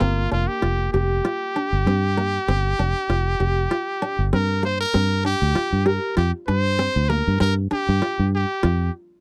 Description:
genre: afrobeat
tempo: 98 BPM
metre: 4/4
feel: swing 54% on 16ths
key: G minor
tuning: A4 = 436 Hz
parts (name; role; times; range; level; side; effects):
- brilliant trumpet; melody; 0.0-8.9 s; F4 to C5; -26 LUFS; equal; none
- kora; arpeggios; 0.0-8.8 s; Bb3 to G4; -29 LUFS; equal; none
- fingered electric bass; bass; 0.0-8.9 s; F1 to G2; -23 LUFS; equal; none
room: little or no reverb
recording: dry, close 1970s-style studio recording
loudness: -22 LUFS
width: mono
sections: 0.0-4.9 A section; 4.9-9.2 B section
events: none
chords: 0.0 Gm7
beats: | 0.02 0.64 1.25 1.87 | 2.48 3.10 3.71 4.33 | 4.95 5.56 6.17 6.79 | 7.40 8.02 8.63

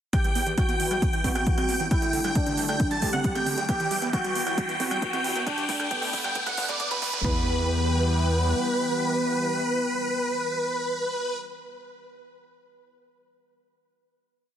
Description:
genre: uplifting trance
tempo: 135 BPM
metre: 4/4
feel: straight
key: E minor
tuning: A4 = 439 Hz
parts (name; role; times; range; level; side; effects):
- big supersaw lead; melody; 0.1-11.4 s; B4 to A5; -28 LUFS; equal; sidechain pumping, tape echo
- clear grand piano; second line; 0.1-11.4 s; B5 to A6; -37 LUFS; right 2 dB; sidechain pumping, tape echo
- warm velvety synth lead; second line; 0.1-11.4 s; B3 to G4; -31 LUFS; left 1 dB; chorus, dub echo
- analog string pad; sustained chords; 0.1-11.4 s; D3 to G4; -36 LUFS; equal; ensemble chorus, sidechain pumping
- wide unison pluck; arpeggios; 0.1-7.5 s; D3 to B3; -37 LUFS; right 3 dB; sidechain pumping, tape echo
- electronic hi-hat and congas; drums; 0.1-7.2 s; none; -34 LUFS; right 3 dB; overdrive
- electronic kick drum; drums; 0.1-7.3 s; none; -27 LUFS; equal; none
- riser; sound effects; 2.6-7.2 s; none; -34 LUFS; equal; none
- fat analog bass; bass; 0.2-8.5 s; D2 to G2; -31 LUFS; equal; sidechain pumping, high-pass filter
room: light reverb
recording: dense, heavily limited modern master, high-pass filter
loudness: -23 LUFS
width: side -10 dB against mid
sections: 0.1-7.2 build; 7.2-10.8 final chord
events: build-up 0.1-7.2; filter sweep on synth pluck 0.1-7.2; filter sweep 0.1-7.2; riser 2.6-7.2; drum fill 3.7-7.2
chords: 0.1 Em; 1.9 Dsus4; 3.7 Em; 5.5 Gadd9; 7.2 Em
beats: | 0.13 0.58 1.02 1.47 | 1.91 2.35 2.80 3.24 | 3.69 4.13 4.58 5.02 | 5.47 5.91 6.36 6.80 | 7.24 7.69 8.13 8.58 | 9.02 9.47 9.91 10.36

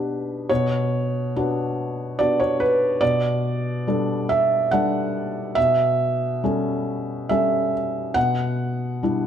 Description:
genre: neoclassical minimalist piano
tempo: 70 BPM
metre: 3/4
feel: rubato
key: B minor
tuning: A4 = 440 Hz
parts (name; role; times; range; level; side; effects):
- felt-muted upright piano; solo; 0.0-9.3 s; B2 to F#5; -20 LUFS; equal; none
room: moderate recital hall reverb, RT60 1.5 s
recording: none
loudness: -20 LUFS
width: side -9 dB against mid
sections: 0.0-9.3 A section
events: none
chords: 0.5 Bmadd9; 3.0 Gadd9/B; 5.6 A7/B; 8.2 Em7/B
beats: | 0.50 1.34 2.18 | 3.01 3.87 4.71 | 5.57 6.43 7.30 | 8.16 9.03

